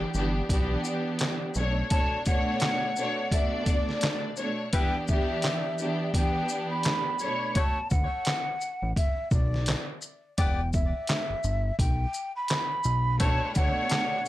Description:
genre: hip hop, boom-bap hip-hop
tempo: 85 BPM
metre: 4/4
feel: swing 59% on 16ths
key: E dorian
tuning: A4 = 440 Hz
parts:
  - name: warm studio string section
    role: accompaniment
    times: 0.0-7.5, 13.2-14.3 s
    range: B2 to D5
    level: -29 LUFS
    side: equal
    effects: cassette tape, high-pass filter, low-pass filter
  - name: fat analog bass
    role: bass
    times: 0.0-1.8, 7.9-13.7 s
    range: E1 to D2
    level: -28 LUFS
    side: equal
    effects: none
  - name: trip hop sampler-style drum kit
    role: drums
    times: 0.1-14.3 s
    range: handclaps, hi-hat, kick drum, shaker, snare drum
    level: -27 LUFS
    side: equal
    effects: none
  - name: breathy mellow jazz flute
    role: melody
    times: 1.9-14.3 s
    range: D5 to B5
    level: -31 LUFS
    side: equal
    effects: high-pass filter, low-pass filter, digital delay
  - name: bright saxophone section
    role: stabs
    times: 4.7-13.7 s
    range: G3 to D5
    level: -36 LUFS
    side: left 4 dB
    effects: high-pass filter, low-pass filter, digital delay
room: little or no reverb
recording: none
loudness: -25 LUFS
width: side -15 dB against mid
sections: 0.0-14.3 A section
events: break 0.0-1.9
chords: 0.0 Em7; 1.6 Bm9; 4.7 Em7; 7.2 Bm9; 10.4 Em; 12.9 Bm9

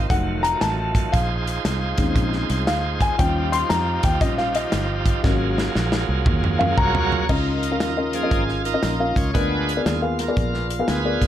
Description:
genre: uptempo gospel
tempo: 117 BPM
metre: 4/4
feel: swing 65% on 8ths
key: Db major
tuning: A4 = 440 Hz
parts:
  - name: bright tonewheel organ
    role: sustained chords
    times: 0.0-11.3 s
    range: Eb3 to Db5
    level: -26 LUFS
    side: right 4 dB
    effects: fast rotary speaker, overdrive
  - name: fingered electric bass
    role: bass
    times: 0.0-11.3 s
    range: F1 to F2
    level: -26 LUFS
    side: equal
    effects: none
  - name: dark upright piano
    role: accompaniment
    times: 0.1-11.3 s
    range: Db3 to C6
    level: -24 LUFS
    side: left 3 dB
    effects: none
  - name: modern studio drum kit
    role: drums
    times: 0.1-11.3 s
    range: crash cymbal, hi-hat, kick drum, snare drum, toms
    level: -23 LUFS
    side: equal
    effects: none
room: light reverb, small room ambience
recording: none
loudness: -19 LUFS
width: side -11 dB against mid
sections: 0.0-7.3 A section; 7.3-11.3 B section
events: upright piano solo 0.0-7.3; drum fill 5.2-7.3; tonewheel organ solo 7.3-11.3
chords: 0.1 F7b9; 1.1 Bbm11; 3.2 Eb9; 5.2 Ab9sus4; 7.3 Db69; 9.3 Bb7b9/D

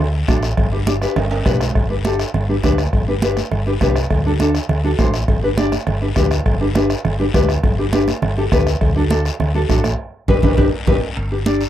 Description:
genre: latin, cumbia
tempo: 204 BPM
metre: 4/4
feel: straight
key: G major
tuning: A4 = 442 Hz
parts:
  - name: hollow-body short-scale fingered electric bass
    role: bass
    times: 0.0-11.6 s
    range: G1 to D2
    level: -20 LUFS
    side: equal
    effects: none
  - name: nylon-string guitar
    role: accompaniment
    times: 0.3-11.6 s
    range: D4 to D5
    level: -19 LUFS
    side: left 1 dB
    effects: none
  - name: bombo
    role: percussion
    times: 0.3-10.9 s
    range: none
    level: -20 LUFS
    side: equal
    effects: none
  - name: congas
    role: percussion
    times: 0.3-11.6 s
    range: none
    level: -23 LUFS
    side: right 4 dB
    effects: none
  - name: guiro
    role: percussion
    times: 0.3-11.7 s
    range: none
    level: -32 LUFS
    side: left 8 dB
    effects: none
  - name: cowbell and timbales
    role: percussion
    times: 0.6-11.7 s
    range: none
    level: -29 LUFS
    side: right 4 dB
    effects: none
room: little or no reverb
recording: dry, close 1970s-style studio recording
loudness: -15 LUFS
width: side -11 dB against mid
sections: 0.0-1.8 A section; 1.8-11.2 B section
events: drum fill 1.2-1.8, 10.0-11.2; band accent 10.0-11.2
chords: 0.0 D; 0.6 G; 4.1 D7; 5.3 G; 8.8 D; 10.0 G; 11.2 G5

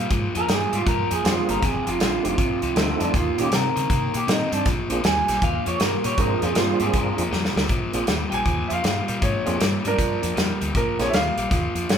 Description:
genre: electric blues shuffle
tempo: 158 BPM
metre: 4/4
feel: swing 64% on 8ths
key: Bb mixolydian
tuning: A4 = 439 Hz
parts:
  - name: electric guitar through a small old amp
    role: melody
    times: 0.0-7.7 s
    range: D4 to Ab5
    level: -25 LUFS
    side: right 3 dB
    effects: none
  - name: overdriven electric guitar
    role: riff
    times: 0.0-12.0 s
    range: F2 to C4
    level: -26 LUFS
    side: left 3 dB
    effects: none
  - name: fingered electric bass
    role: bass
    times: 0.0-12.0 s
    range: F1 to Db3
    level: -29 LUFS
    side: equal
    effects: none
  - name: natural country drum kit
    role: drums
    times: 0.1-12.0 s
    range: hi-hat, kick drum, snare drum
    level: -24 LUFS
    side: equal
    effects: none
  - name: tonewheel organ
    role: accompaniment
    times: 1.2-11.1 s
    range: A3 to A4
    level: -28 LUFS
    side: right 3 dB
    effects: slow rotary speaker, overdrive, chorus vibrato
  - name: clear upright piano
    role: second line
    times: 8.3-12.0 s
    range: D4 to Ab5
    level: -26 LUFS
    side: right 1 dB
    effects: none
room: light reverb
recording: band playing live in one room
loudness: -20 LUFS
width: side -8 dB against mid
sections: 0.0-7.7 A section; 7.7-12.0 A section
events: clean electric guitar solo 0.0-7.7; drum fill 7.3-7.7; upright piano solo 7.7-12.0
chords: 0.0 Bb9; 1.6 F9; 3.1 Eb9; 4.7 Bb9

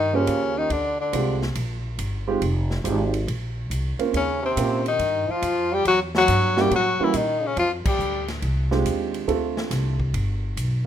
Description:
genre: jazz, small-group swing and bop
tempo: 140 BPM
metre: 4/4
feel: swing 67% on 8ths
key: Bb mixolydian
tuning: A4 = 440 Hz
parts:
  - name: bright tenor saxophone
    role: melody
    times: 0.0-1.4, 4.2-8.3 s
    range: C4 to G4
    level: -22 LUFS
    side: left 5 dB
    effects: none
  - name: brilliant trombone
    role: second line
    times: 0.0-1.4, 4.1-8.3 s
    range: C3 to G3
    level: -27 LUFS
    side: right 5 dB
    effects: none
  - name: upright bass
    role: bass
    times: 0.0-10.9 s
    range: F1 to Bb2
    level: -26 LUFS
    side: equal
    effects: none
  - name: warm grand piano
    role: accompaniment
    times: 0.1-9.9 s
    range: G3 to C5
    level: -25 LUFS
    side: right 6 dB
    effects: none
  - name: swinging big-band drum kit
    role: drums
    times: 0.3-10.7 s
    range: crash cymbal, hi-hat, kick drum, ride cymbal, snare drum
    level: -33 LUFS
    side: equal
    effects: none
room: light reverb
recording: minimal, uncompressed stereo recording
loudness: -21 LUFS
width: side -10 dB against mid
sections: 0.0-10.9 A section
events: band accent 7.8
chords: 0.0 Eb13; 0.7 Bb13; 2.4 Fm7; 3.3 Bbsus2; 4.1 Eb13; 5.8 Edim7; 7.6 Fm13; 9.3 Dm7; 10.1 G

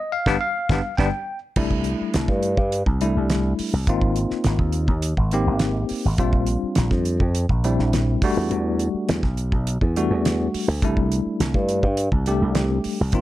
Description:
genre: electric jazz fusion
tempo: 104 BPM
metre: 4/4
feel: straight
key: unclear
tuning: A4 = 440 Hz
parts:
  - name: bell-like tine electric piano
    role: accompaniment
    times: 0.0-13.2 s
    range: G3 to G5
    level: -24 LUFS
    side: left 2 dB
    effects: fast stereo tremolo
  - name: slap bass with an envelope filter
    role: bass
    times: 0.3-13.2 s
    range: G1 to G2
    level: -22 LUFS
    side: equal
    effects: none
  - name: damped 70s drum kit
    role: drums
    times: 0.3-13.2 s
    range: crash cymbal, hi-hat, kick drum, snare drum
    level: -24 LUFS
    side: right 1 dB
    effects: none
room: light reverb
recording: dark, warm production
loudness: -19 LUFS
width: side -15 dB against mid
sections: 0.0-1.6 A section; 1.6-13.2 B section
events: band accent 0.0-1.6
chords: 0.0 G7; 1.6 C69; 3.9 Ab6; 6.2 Bb6; 8.2 Em11; 10.8 C69

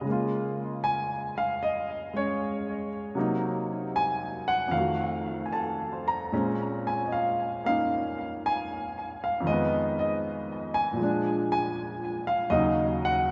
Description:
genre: solo jazz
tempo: 77 BPM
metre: 4/4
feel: swing 69% on 8ths, rubato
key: Db major, Bb minor from 6.3 s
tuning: A4 = 440 Hz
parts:
  - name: warm baby grand piano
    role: solo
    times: 0.0-13.3 s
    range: Eb2 to Bb5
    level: -29 LUFS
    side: equal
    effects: subtle chorus, tape echo
room: wet lush hall reverb, RT60 2.7 s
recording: dreamy mix soaked in reverb, nothing above 7.8 kHz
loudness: -29 LUFS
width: mono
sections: 0.0-6.3 A section; 6.3-13.3 B section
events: none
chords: 0.1 Db6; 3.2 Cm7b5; 4.7 F7b9; 6.3 Bbm9; 9.4 Fm7b5; 11.0 Bb7; 12.5 Ebm7

